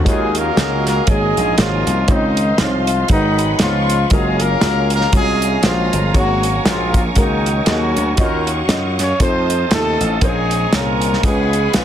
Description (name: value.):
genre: uptempo gospel.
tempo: 118 BPM.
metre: 4/4.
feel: swing 57% on 8ths.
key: Db major.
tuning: A4 = 443 Hz.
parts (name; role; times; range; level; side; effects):
warm horn section; melody; 0.0-11.8 s; Eb3 to Db5; -19 LUFS; left 1 dB; none.
dark upright piano; accompaniment; 0.0-11.8 s; Ab2 to Eb5; -23 LUFS; equal; none.
dark studio string section; sustained chords; 0.0-11.8 s; Gb4 to Db6; -29 LUFS; right 1 dB; none.
gritty slap bass; bass; 0.0-11.8 s; Gb1 to Gb2; -20 LUFS; equal; overdrive.
bright tonewheel organ; sustained chords; 0.1-11.8 s; Ab4 to Eb6; -27 LUFS; right 4 dB; chorus vibrato, stopped rotary speaker.
warm soul drum kit; drums; 0.1-11.8 s; hi-hat, kick drum, snare drum; -18 LUFS; equal; soft clipping on snare.
room: studio reverb.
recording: dense, heavily limited modern master.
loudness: -14 LUFS.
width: side -10 dB against mid.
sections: 0.0-11.8 A section.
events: none.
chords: 0.1 Ebm11; 1.1 Ab9sus4; 2.1 Dbmaj9; 3.1 Abm7; 3.6 Db9; 4.1 Gbmaj9; 6.1 Ab9sus4; 8.2 Ebm9; 9.2 F7; 10.2 Bbm9; 11.2 Db7.